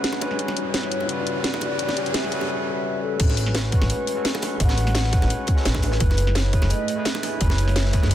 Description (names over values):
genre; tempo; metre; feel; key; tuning
liquid drum and bass; 171 BPM; 4/4; straight; A major; A4 = 436 Hz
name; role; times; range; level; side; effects
hollow clarinet-like synth lead; melody; 0.0-8.1 s; A4 to F#5; -30 LUFS; left 2 dB; wide subtle chorus, tape echo
overdriven tine electric piano; accompaniment; 0.0-8.1 s; C#3 to B4; -29 LUFS; equal; tape echo
warm analog pad; sustained chords; 0.0-8.1 s; G3 to C#6; -34 LUFS; right 1 dB; chorus
garage drum kit; drums; 0.0-8.1 s; crash cymbal, hi-hat, snare drum; -28 LUFS; equal; none
riser; sound effects; 0.0-2.5 s; none; -32 LUFS; equal; none
bongos; percussion; 0.1-8.1 s; none; -34 LUFS; right 3 dB; none
upright bass; bass; 3.2-8.1 s; F#1 to A1; -22 LUFS; equal; tube saturation
crunchy breakbeat drum kit; drums; 3.2-8.1 s; hi-hat, snare drum; -34 LUFS; equal; high-pass filter on hats, high-pass filter on snare, high-pass filter on room
electronic kick drum; drums; 3.2-8.0 s; none; -21 LUFS; equal; none
room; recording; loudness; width
small room ambience; dense, heavily limited modern master; -20 LUFS; side -12 dB against mid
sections
0.0-3.2 A section; 3.2-8.1 B section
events
build-up 0.0-3.2; riser 0.0-2.5; drop 3.2-8.1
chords
0.4 G6; 3.2 Amaj13; 6.0 F#m11